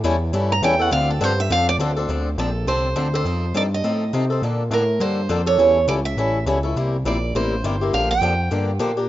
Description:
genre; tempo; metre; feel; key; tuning
acoustic string swing (jazz manouche); 206 BPM; 4/4; swing 59% on 8ths; D minor; A4 = 440 Hz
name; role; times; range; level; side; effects
picked swing-style acoustic guitar; accompaniment; 0.0-9.1 s; C3 to A4; -24 LUFS; left 3 dB; none
fat analog bass; bass; 0.0-9.1 s; G1 to C3; -22 LUFS; equal; none
picked steel-string acoustic guitar; melody; 0.5-8.6 s; A4 to Bb5; -21 LUFS; right 3 dB; none
room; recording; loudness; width
light reverb, small room ambience; rough home demo mix, nothing above 7.6 kHz; -18 LUFS; side -14 dB against mid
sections
0.0-2.1 A section; 2.1-9.1 B section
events
steel-string acoustic guitar solo 0.0-2.1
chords
0.0 A7; 0.9 Dm7; 3.3 F7; 4.4 Bbmaj7; 5.6 A7; 6.8 C7; 7.9 Bb6

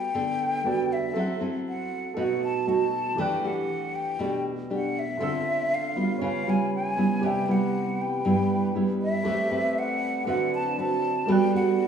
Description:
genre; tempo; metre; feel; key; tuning
bossa nova; 119 BPM; 4/4; straight; G major; A4 = 440 Hz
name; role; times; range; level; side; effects
breathy mellow silver concert flute; melody; 0.0-11.9 s; E5 to A5; -28 LUFS; left 2 dB; none
nylon-string guitar; accompaniment; 0.0-11.9 s; G2 to B4; -26 LUFS; right 2 dB; none
warm baby grand piano; accompaniment; 0.0-11.9 s; D3 to F#6; -34 LUFS; right 4 dB; none
warm French horn section; sustained chords; 7.2-11.9 s; E3 to B4; -35 LUFS; right 2 dB; none
room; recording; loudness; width
wet recital hall reverb, RT60 1.6 s; recorded in a church or concert hall, small room ambience; -24 LUFS; side -7 dB against mid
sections
0.0-11.9 A section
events
none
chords
0.0 Gmaj9; 1.2 F#m7b5; 2.2 B7; 3.2 Em11; 5.2 Dm7; 6.2 C#7#11; 7.2 Cmaj7; 9.3 Am9; 10.3 D13; 11.3 Gmaj9

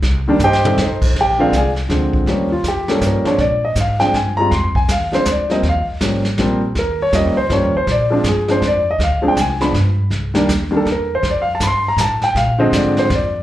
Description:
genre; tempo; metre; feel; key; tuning
jazz piano trio; 161 BPM; 3/4; swing 64% on 8ths; Bb mixolydian; A4 = 442 Hz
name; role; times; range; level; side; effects
upright bass; bass; 0.0-13.4 s; Ab1 to Bb2; -20 LUFS; equal; none
vintage brush drum kit; drums; 0.0-13.4 s; brushed snare drum, crash cymbal, hi-hat, kick drum, snare drum, toms; -23 LUFS; equal; none
warm grand piano; melody; 0.3-13.4 s; D3 to C6; -16 LUFS; equal; slapback echo
room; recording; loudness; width
moderate club reverb, RT60 0.7 s; live gig heard through the venue's PA, club reverb; -14 LUFS; side -13 dB against mid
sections
0.0-1.1 A section; 1.1-13.4 A section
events
grand piano solo 0.0-13.4; drum fill 0.4-0.8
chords
0.0 Cm; 0.8 F7; 1.1 Bb7; 2.3 Eb7; 3.4 Bb7; 4.5 Fm7; 5.3 Bb; 5.6 Eb7; 7.9 Bb7; 9.0 Dm7b5; 9.7 G; 10.1 Cm7; 11.2 F; 12.4 Bb7

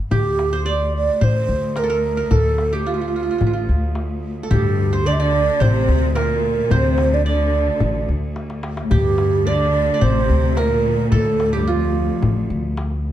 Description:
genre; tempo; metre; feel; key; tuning
Arabic maqam ensemble; 109 BPM; 4/4; straight; D maqam bayati; A4 = 440 Hz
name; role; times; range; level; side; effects
qanun; second line; 0.0-13.0 s; F4 to D5; -27 LUFS; right 3 dB; none
breathy mellow low ney; melody; 0.1-12.5 s; F4 to E5-47c; -21 LUFS; right 4 dB; none
upright bass; bass; 0.1-13.1 s; A1 to D2; -22 LUFS; equal; none
rich cello; drone; 0.1-13.1 s; D2; -27 LUFS; left 2 dB; none
darbuka; percussion; 0.1-12.9 s; none; -22 LUFS; left 2 dB; none
rich studio cello section; second line; 4.5-12.5 s; F2 to D3; -23 LUFS; left 1 dB; none
room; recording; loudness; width
moderate recital hall reverb, RT60 1.5 s; dark, warm production; -16 LUFS; side -12 dB against mid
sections
0.1-8.9 A section; 8.9-13.1 A section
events
drum fill 8.4-8.9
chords
none

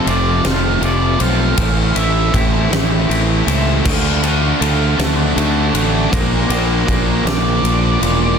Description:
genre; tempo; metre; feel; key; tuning
quiet-loud alternative rock; 53 BPM (dotted quarters); 6/8; straight; unclear; A4 = 440 Hz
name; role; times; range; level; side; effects
octave-fuzz lead guitar; melody; 0.0-8.4 s; F4 to A5; -22 LUFS; right 3 dB; distortion
twangy electric guitar; arpeggios; 0.0-3.8 s; A2 to F4; -24 LUFS; left 1 dB; tremolo
fuzz guitar; riff; 0.0-8.4 s; F2 to D4; -21 LUFS; left 15 dB; distortion
fuzz guitar; riff; 0.0-8.4 s; A2 to F#4; -20 LUFS; right 13 dB; distortion
growling fingered electric bass; bass; 0.1-8.4 s; E1 to D2; -18 LUFS; equal; overdrive
huge arena drum kit; drums; 0.1-8.2 s; crash cymbal, kick drum, ride cymbal, snare drum; -20 LUFS; left 1 dB; none
room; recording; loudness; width
light reverb; dense, heavily limited modern master; -13 LUFS; side -6 dB against mid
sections
0.0-8.4 A section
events
lead electric guitar solo 0.0-8.4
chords
0.0 F; 1.6 Am; 3.9 D; 6.1 Bb

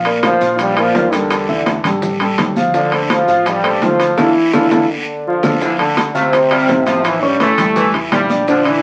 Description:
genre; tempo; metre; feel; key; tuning
latin, salsa; 167 BPM; 4/4; straight; D minor; A4 = 441 Hz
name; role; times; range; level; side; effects
warm upright piano; accompaniment; 0.0-8.8 s; D3 to F6; -20 LUFS; equal; none
deep dub fingered electric bass; bass; 0.0-8.8 s; A1 to Bb2; -32 LUFS; equal; none
bongos; percussion; 0.1-8.8 s; none; -28 LUFS; equal; none
congas; percussion; 0.1-8.8 s; none; -26 LUFS; equal; none
maracas; percussion; 0.1-8.8 s; none; -42 LUFS; equal; none
timbales; percussion; 0.1-8.8 s; none; -22 LUFS; equal; none
bright trombone section; melody; 0.2-8.8 s; G2 to F4; -18 LUFS; equal; none
guiro; percussion; 0.2-8.8 s; none; -30 LUFS; equal; none
bright saxophone section; second line; 5.6-8.8 s; D3 to A3; -23 LUFS; equal; none
room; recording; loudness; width
wet studio reverb, RT60 0.5 s; very old 78 rpm record, vinyl crackle; -14 LUFS; mono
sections
0.0-5.6 A section; 5.6-8.8 B section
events
band accent 4.2-5.6; drum fill 4.9-5.6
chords
0.0 Bb6; 1.3 Em7b5; 2.0 Dmadd11/A; 2.7 Dm9; 7.0 A7

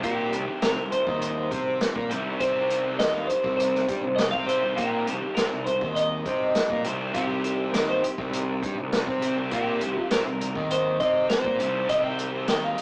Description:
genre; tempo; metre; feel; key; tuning
indie rock; 101 BPM; 4/4; straight; C minor; A4 = 440 Hz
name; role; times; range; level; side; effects
twelve-string electric guitar; melody; 0.0-12.8 s; G4 to G5; -29 LUFS; equal; slapback echo
crunchy overdriven guitar; riff; 0.0-12.8 s; C3 to G4; -35 LUFS; equal; none
overdriven electric guitar; riff; 0.0-12.8 s; C3 to C5; -35 LUFS; equal; none
fuzz picked electric bass; bass; 0.0-12.8 s; C2 to C3; -33 LUFS; equal; overdrive
vintage drum kit; drums; 0.0-12.8 s; hi-hat, kick drum, snare drum; -32 LUFS; equal; none
room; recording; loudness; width
moderate studio reverb, RT60 0.5 s; rough rehearsal-room recording, small speaker sound; -26 LUFS; mono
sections
0.0-12.8 A section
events
none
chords
0.0 Cm

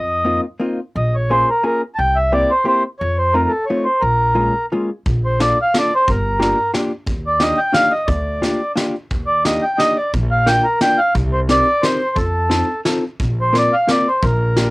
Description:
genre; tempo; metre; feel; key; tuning
musette waltz; 177 BPM; 3/4; rubato; Bb minor, Bb major from 5.0 s; A4 = 440 Hz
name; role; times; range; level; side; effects
mellow accordion; melody; 0.0-14.7 s; A4 to A5; -16 LUFS; equal; cassette tape
upright bass; bass; 0.0-14.7 s; G1 to F2; -20 LUFS; equal; tube saturation
hollow-body jazz guitar; accompaniment; 0.2-14.7 s; Ab3 to Bb4; -20 LUFS; left 1 dB; cassette tape
soft brush drum kit; drums; 5.1-14.6 s; hi-hat, kick drum, snare drum; -23 LUFS; equal; cassette tape
room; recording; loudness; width
moderate booth ambience, RT60 0.3 s; home recording on cassette; -15 LUFS; side -23 dB against mid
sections
0.0-5.0 A section; 5.0-14.7 B section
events
none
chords
0.0 F7sus4; 1.0 Bbm7; 2.0 C7; 3.0 F7; 4.0 Bbm7; 5.0 Bbmaj7; 6.1 Gm7; 7.1 Ebmaj7; 8.1 Bb6/D; 9.1 Ebmaj7; 10.1 Bb; 11.1 Cm7; 12.2 F7; 13.2 Bbsus2

